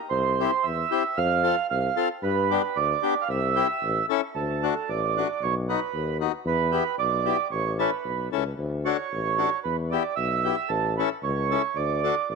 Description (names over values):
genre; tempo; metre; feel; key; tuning
alpine folk, alpine dance band; 113 BPM; 2/4; straight; C major, D major from 4.3 s; A4 = 440 Hz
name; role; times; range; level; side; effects
mellow accordion; melody; 0.1-12.4 s; A4 to F5; -26 LUFS; right 11 dB; none
warm tuba; bass; 0.1-12.4 s; A1 to G2; -28 LUFS; left 2 dB; none
accordion; accompaniment; 0.4-12.2 s; A3 to A4; -29 LUFS; left 15 dB; none
room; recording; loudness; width
light reverb, studio ambience; 1960s-style stereo with parts hard left and right; -23 LUFS; side -4 dB against mid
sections
0.0-4.3 A section; 4.3-12.4 B section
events
none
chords
0.1 C; 1.2 F; 2.2 G; 3.3 C; 3.8 A; 4.3 D; 5.4 B; 6.5 Em; 7.5 A; 8.6 D; 9.6 Em; 10.7 A; 11.8 D